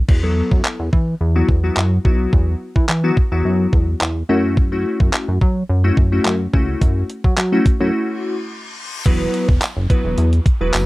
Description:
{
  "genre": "dance-pop",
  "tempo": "107 BPM",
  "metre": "4/4",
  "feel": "straight",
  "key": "unclear",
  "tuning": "A4 = 440 Hz",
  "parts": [
    { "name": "chorused synth bass", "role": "bass", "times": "0.0-10.9 s", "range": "E1 to F#3", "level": "-18 LUFS", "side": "equal", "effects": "sidechain pumping" },
    { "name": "glassy digital keys", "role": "accompaniment", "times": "0.1-10.9 s", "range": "F#3 to B4", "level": "-20 LUFS", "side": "left 1 dB", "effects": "chorus, sidechain pumping" },
    { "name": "crisp 8-bit digital drum machine", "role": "drums", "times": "0.1-10.9 s", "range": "crash cymbal, handclaps, hi-hat, kick drum", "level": "-16 LUFS", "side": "equal", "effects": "none" },
    { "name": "reverse cymbal and downlifter", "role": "sound effects", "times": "8.1-10.9 s", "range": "none", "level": "-33 LUFS", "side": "left 2 dB", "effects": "none" },
    { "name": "tambourine", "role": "percussion", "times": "9.6-10.9 s", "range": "none", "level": "-35 LUFS", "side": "right 2 dB", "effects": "none" }
  ],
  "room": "little or no reverb",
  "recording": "dry, gritty hardware recording",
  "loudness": "-15 LUFS",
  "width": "side -20 dB against mid",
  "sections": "0.1-9.1 A section; 9.1-10.9 B section",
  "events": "break 7.9-9.1; reverse cymbal 8.1-9.1",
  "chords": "0.1 Esus2; 4.3 F#m7; 9.1 Esus2"
}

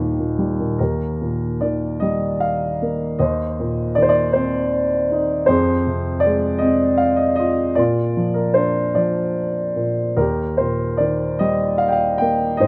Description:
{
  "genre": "classical, lyrical solo piano",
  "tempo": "51 BPM (dotted quarters)",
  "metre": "6/8",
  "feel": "uneven beats, rubato",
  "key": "Eb major",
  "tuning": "A4 = 440 Hz",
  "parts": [
    { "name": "dark grand piano", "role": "solo", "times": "0.0-12.7 s", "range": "Eb2 to G5", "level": "-20 LUFS", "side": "equal", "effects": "none" }
  ],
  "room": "light reverb",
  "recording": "close, detailed microphones",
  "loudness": "-20 LUFS",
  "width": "mono",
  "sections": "0.8-12.7 A section",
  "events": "none",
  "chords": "0.0 Eb; 3.2 Cm9/Eb; 5.5 Fm; 7.8 Bb; 10.2 Eb"
}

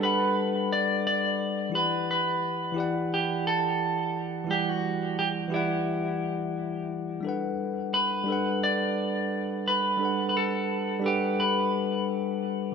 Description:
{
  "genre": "chillout",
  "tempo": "87 BPM",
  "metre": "4/4",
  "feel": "swing 54% on 16ths",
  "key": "G major",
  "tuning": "A4 = 443 Hz",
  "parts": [
    { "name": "clean electric guitar", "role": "melody", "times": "0.0-12.0 s", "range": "E4 to D5", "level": "-28 LUFS", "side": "right 1 dB", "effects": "diffuse ambient delay" },
    { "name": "bell-like tine electric piano", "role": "accompaniment", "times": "0.0-12.7 s", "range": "E3 to F#5", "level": "-28 LUFS", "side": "moving between left 8 dB and right 6 dB", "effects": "auto-pan, diffuse ambient delay" }
  ],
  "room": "wet plate reverb, RT60 3.5 s",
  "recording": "dreamy mix soaked in reverb",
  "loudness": "-25 LUFS",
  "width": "side -6 dB against mid",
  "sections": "0.0-12.7 A section",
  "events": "none",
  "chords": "0.0 Gmaj7; 1.7 Em7; 7.2 Gmaj7"
}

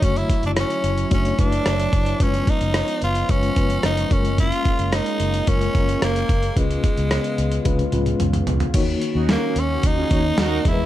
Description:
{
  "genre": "1980s-style pop",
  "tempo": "110 BPM",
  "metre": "4/4",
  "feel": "straight",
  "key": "unclear",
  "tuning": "A4 = 439 Hz",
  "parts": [
    { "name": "raspy tenor saxophone", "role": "melody", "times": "0.0-10.9 s", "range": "G#3 to E#4", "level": "-24 LUFS", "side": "equal", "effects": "tape echo" },
    { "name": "FM electric piano with tremolo", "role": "accompaniment", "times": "0.0-10.9 s", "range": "C#3 to D#5", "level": "-27 LUFS", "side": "left 4 dB", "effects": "none" },
    { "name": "sweeping resonant pad", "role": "sustained chords", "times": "0.0-10.9 s", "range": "C#3 to D#5", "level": "-29 LUFS", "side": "right 2 dB", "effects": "chorus" },
    { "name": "vintage muted fingered electric bass", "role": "bass", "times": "0.0-10.9 s", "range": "F#1 to E2", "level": "-24 LUFS", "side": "equal", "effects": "none" },
    { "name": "dusty soul sampler-style drum kit", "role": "drums", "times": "0.0-10.8 s", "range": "crash cymbal, hi-hat, kick drum, rim click, snare drum, toms", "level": "-22 LUFS", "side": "equal", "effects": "overdrive" },
    { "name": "analog synth brass", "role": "stabs", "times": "9.2-10.6 s", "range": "C#4 to A#4", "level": "-29 LUFS", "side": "right 6 dB", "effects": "chorus" }
  ],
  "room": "light reverb",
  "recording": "dark, warm production",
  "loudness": "-18 LUFS",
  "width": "side -13 dB against mid",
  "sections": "0.0-8.7 A section; 8.7-10.9 B section",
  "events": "drum fill 7.7-8.7",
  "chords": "0.0 Dmaj7/F#; 2.2 C#7/F#; 4.1 A#m7/F#; 6.6 C#7; 8.7 D#m7"
}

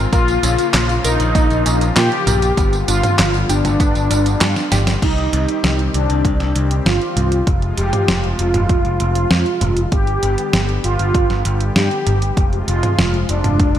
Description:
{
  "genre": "synthwave",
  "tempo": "98 BPM",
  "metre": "4/4",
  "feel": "straight",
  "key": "C harmonic minor from 5.0 s",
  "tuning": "A4 = 442 Hz",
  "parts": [
    { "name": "brassy analog pad", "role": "sustained chords", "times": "0.0-13.8 s", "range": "C3 to G4", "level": "-25 LUFS", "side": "left 2 dB", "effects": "chorus, sidechain pumping" },
    { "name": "analog pluck", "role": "arpeggios", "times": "0.0-5.0 s", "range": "Bb3 to Bb4", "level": "-26 LUFS", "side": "right 2 dB", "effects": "chorus, phaser, ping-pong delay" },
    { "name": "modern bright picked electric bass", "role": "bass", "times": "0.0-13.8 s", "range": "F1 to Bb2", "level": "-18 LUFS", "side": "equal", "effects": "none" },
    { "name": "mellow synth brass", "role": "melody", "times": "0.1-13.8 s", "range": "D4 to G4", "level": "-20 LUFS", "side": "left 1 dB", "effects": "chorus, ping-pong delay" },
    { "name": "clean 12-bit digital drum machine", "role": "drums", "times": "0.1-13.8 s", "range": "crash cymbal, handclaps, hi-hat, snare drum, tambourine, toms", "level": "-20 LUFS", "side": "right 1 dB", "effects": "none" },
    { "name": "electronic kick drum", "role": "drums", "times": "0.1-13.7 s", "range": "none", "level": "-17 LUFS", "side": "equal", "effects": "overdrive" }
  ],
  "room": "moderate lush hall reverb, RT60 1.7 s",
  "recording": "bright 1980s-style digital production",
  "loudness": "-14 LUFS",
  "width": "side -10 dB against mid",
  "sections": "0.0-5.0 A section; 5.0-13.8 B section",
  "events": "drum fill 4.6-5.0",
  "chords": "0.1 Bbm; 2.6 G7; 5.0 Cm; 7.5 Fm; 9.9 G; 12.4 Fm"
}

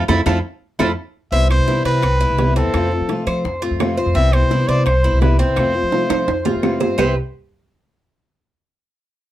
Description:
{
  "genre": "latin, Cuban son and guajira",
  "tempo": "170 BPM",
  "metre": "4/4",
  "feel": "straight",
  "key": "C major",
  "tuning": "A4 = 440 Hz",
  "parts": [
    { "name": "fingerpicked steel-string acoustic guitar", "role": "accompaniment", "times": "0.0-7.1 s", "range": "C3 to F4", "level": "-23 LUFS", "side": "left 3 dB", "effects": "none" },
    { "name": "Cuban tres", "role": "arpeggios", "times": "0.0-7.1 s", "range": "C4 to C5", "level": "-23 LUFS", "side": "right 1 dB", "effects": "none" },
    { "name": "upright bass", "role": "bass", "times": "0.0-7.1 s", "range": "C2 to F3", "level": "-18 LUFS", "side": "equal", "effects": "none" },
    { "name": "bongos", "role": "percussion", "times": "0.1-7.1 s", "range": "none", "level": "-27 LUFS", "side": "left 5 dB", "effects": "none" },
    { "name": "claves", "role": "percussion", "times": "0.1-7.1 s", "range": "none", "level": "-32 LUFS", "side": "left 3 dB", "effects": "none" },
    { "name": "timbales", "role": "percussion", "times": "0.1-7.1 s", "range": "none", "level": "-24 LUFS", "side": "right 7 dB", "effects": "none" },
    { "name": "clear trumpet", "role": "melody", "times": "1.3-7.1 s", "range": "A4 to E5", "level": "-20 LUFS", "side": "equal", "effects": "none" }
  ],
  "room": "light reverb",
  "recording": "dark, warm production",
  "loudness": "-15 LUFS",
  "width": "side -13 dB against mid",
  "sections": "0.0-1.3 A section; 1.3-7.0 B section; 7.0-8.4 C section",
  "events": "band accent 0.0-1.3; drum fill 0.6-1.3, 5.9-7.0",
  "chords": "0.0 Fmaj7; 1.3 Cmaj7; 2.7 Fmaj7; 4.2 Cmaj7; 5.6 Fmaj7; 7.0 Cmaj7"
}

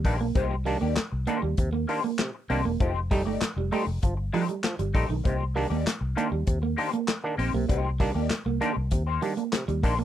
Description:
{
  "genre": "funk",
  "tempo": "98 BPM",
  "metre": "4/4",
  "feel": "straight",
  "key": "C dorian",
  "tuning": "A4 = 439 Hz",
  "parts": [
    { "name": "clean electric guitar", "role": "accompaniment", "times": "0.0-10.0 s", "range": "A3 to D5", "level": "-32 LUFS", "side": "left 7 dB", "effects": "wah, ensemble chorus" },
    { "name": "electric guitar at the edge of break-up", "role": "riff", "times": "0.0-10.0 s", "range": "Eb3 to C4", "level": "-30 LUFS", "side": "right 8 dB", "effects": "none" },
    { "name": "vintage muted fingered electric bass", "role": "bass", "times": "0.0-10.0 s", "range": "E1 to Eb2", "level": "-28 LUFS", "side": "left 1 dB", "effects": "none" },
    { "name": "warm soul drum kit", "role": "drums", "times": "0.0-10.0 s", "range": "handclaps, hi-hat, kick drum, snare drum", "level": "-28 LUFS", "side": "left 1 dB", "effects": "none" },
    { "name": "auto-wah clav", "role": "stabs", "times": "0.1-10.0 s", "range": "C3 to Eb4", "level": "-31 LUFS", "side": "right 2 dB", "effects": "overdrive" }
  ],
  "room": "little or no reverb",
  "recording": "none",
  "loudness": "-24 LUFS",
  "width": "side -11 dB against mid",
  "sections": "0.0-10.0 A section",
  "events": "none",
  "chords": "0.0 Cm7; 2.8 F9; 5.2 Cm7"
}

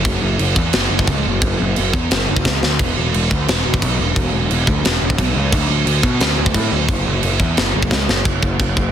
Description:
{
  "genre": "heavy metal",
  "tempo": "176 BPM",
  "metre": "4/4",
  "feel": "straight",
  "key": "unclear",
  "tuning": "A4 = 440 Hz",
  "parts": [
    { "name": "fuzz picked electric bass", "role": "bass", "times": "0.0-8.9 s", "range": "E1 to B2", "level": "-18 LUFS", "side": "equal", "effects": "overdrive" },
    { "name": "tight metal drum kit", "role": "drums", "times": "0.1-8.8 s", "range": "china cymbal, crash cymbal, kick drum, snare drum", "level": "-17 LUFS", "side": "right 1 dB", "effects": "soft clipping on kick" }
  ],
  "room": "little or no reverb",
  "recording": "dense, heavily limited modern master",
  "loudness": "-14 LUFS",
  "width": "side -9 dB against mid",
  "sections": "0.0-8.3 A section",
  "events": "drum fill 2.5-2.8, 7.9-8.3",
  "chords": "none"
}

